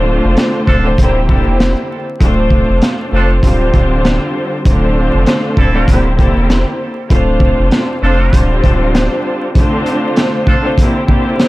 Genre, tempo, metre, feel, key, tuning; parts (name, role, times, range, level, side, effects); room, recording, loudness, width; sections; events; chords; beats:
hip hop, boom-bap hip-hop; 98 BPM; 4/4; swing 59% on 16ths; A4 = 440 Hz
dark studio string section; accompaniment; 0.0-11.5 s; D3 to C5; -14 LUFS; equal; high-pass filter, low-pass filter
saturated sub bass; bass; 0.0-9.1 s; D1 to F1; -14 LUFS; equal
crunchy breakbeat drum kit; drums; 0.4-11.5 s; hi-hat, kick drum, snare drum; -13 LUFS; equal
muted trumpet section; stabs; 0.7-10.7 s; C4 to A4; -23 LUFS; right 2 dB; high-pass filter, low-pass filter, ping-pong delay
studio reverb; vinyl crackle; -10 LUFS; side -18 dB against mid
0.0-11.5 A section
0.0 F6/D; 1.0 C7/D; 2.2 Dm7; 3.4 G7sus4/D; 4.7 F6/D; 5.9 C7/D; 7.1 Dm7; 8.3 G7sus4/D; 9.6 F6/D; 10.8 C7/D
0.37 0.98 1.59 | 2.21 2.82 3.43 4.04 | 4.65 5.27 5.88 6.49 | 7.10 7.72 8.33 8.94 | 9.55 10.16 10.78 11.39